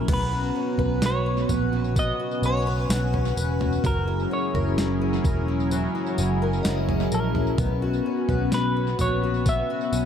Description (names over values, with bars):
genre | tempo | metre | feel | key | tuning
dream pop | 64 BPM | 4/4 | straight | unclear | A4 = 439 Hz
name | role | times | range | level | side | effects
semi-hollow electric guitar | melody | 0.0-10.1 s | A#4 to E5 | -30 LUFS | equal | analog chorus, tape echo
phased analog pad | sustained chords | 0.0-10.1 s | F#3 to A#4 | -27 LUFS | equal | phaser, chorus
fingerpicked twelve-string acoustic guitar | arpeggios | 0.0-10.1 s | F#3 to B4 | -30 LUFS | left 3 dB | wide subtle chorus, tape echo
vintage muted picked electric bass | bass | 0.0-10.1 s | E1 to B1 | -26 LUFS | equal | none
crisp 8-bit digital drum machine | drums | 0.1-10.1 s | crash cymbal, kick drum, snare drum, tambourine, toms | -28 LUFS | right 1 dB | overdrive, tape echo
shimmering bell with halo | texture | 0.2-8.0 s | D#5 to C#6 | -41 LUFS | left 2 dB | ensemble chorus, tape echo
room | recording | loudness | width
light reverb | echo-heavy mix | -21 LUFS | side -8 dB against mid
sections
0.1-10.1 A section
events
none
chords
0.1 Bsus2; 3.8 F#7; 7.6 Bsus2